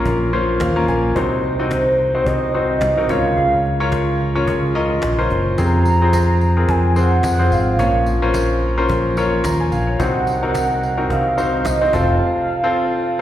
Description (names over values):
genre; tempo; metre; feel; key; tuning
piano-driven pop; 109 BPM; 4/4; swing 56% on 16ths; Bb minor; A4 = 438 Hz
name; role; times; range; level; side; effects
clear concert grand piano; accompaniment; 0.0-13.2 s; Bb2 to Bb5; -19 LUFS; left 2 dB; plate reverb, slapback echo
fingered electric bass; bass; 0.1-12.2 s; F1 to F2; -19 LUFS; equal; none
cajon; drums; 0.1-12.1 s; none; -27 LUFS; equal; none
warm velvety synth lead; melody; 1.2-13.2 s; C5 to Bb5; -20 LUFS; right 2 dB; chorus, plate reverb, slapback echo, ping-pong delay
tambourine; percussion; 5.6-12.1 s; none; -39 LUFS; left 2 dB; none
room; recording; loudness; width
light reverb; live gig heard through the venue's PA, recital hall reverb; -15 LUFS; side -12 dB against mid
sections
0.0-13.2 A section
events
grand piano fill 0.3-1.2; break 12.2-13.2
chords
0.0 Bbm; 1.2 Cdim; 3.1 Bbm/Db; 5.6 Fm; 7.8 Bbm; 10.0 Cdim; 11.9 F